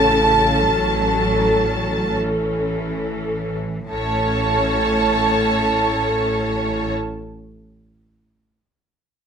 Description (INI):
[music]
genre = classical, slow romantic movement for string orchestra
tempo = free time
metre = none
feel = none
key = A major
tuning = A4 = 440 Hz
[part]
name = clear symphonic violin section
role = melody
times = 0.0-6.9 s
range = C#5 to A5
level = -26 LUFS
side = equal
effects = none
[part]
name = warm symphonic violin section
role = second line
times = 0.0-6.9 s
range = A5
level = -21 LUFS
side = right 3 dB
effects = none
[part]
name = rich symphonic viola section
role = accompaniment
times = 0.0-6.9 s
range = C#4 to A4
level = -22 LUFS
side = left 1 dB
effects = none
[part]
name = rich symphonic cello section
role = bass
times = 0.0-6.9 s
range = A2 to F#3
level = -26 LUFS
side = equal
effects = none
[part]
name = rich symphonic double bass section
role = bass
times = 0.0-6.9 s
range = A1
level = -25 LUFS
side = equal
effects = none
[sound]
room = moderate studio reverb, RT60 0.8 s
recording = minimal, uncompressed stereo recording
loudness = -17 LUFS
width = side -7 dB against mid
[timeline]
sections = 0.0-3.9 A section; 3.9-9.3 B section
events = slowing down 0.0-3.9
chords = 0.0 A